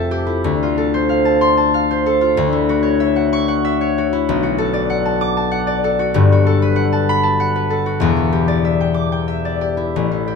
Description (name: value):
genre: classical, solo harp piece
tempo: 95 BPM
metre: 3/4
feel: uneven beats, rubato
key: unclear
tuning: A4 = 441 Hz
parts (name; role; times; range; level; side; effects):
- concert harp; solo; 0.0-10.4 s; E1 to D6; -14 LUFS; left 2 dB; none
room: wet stone room reverb, RT60 1.2 s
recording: minimal, uncompressed stereo recording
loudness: -14 LUFS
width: side -5 dB against mid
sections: 0.0-10.4 A section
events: none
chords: 0.4 Dm7; 2.4 Dmaj9; 4.3 Bm7; 6.1 Gmaj9; 8.0 Em7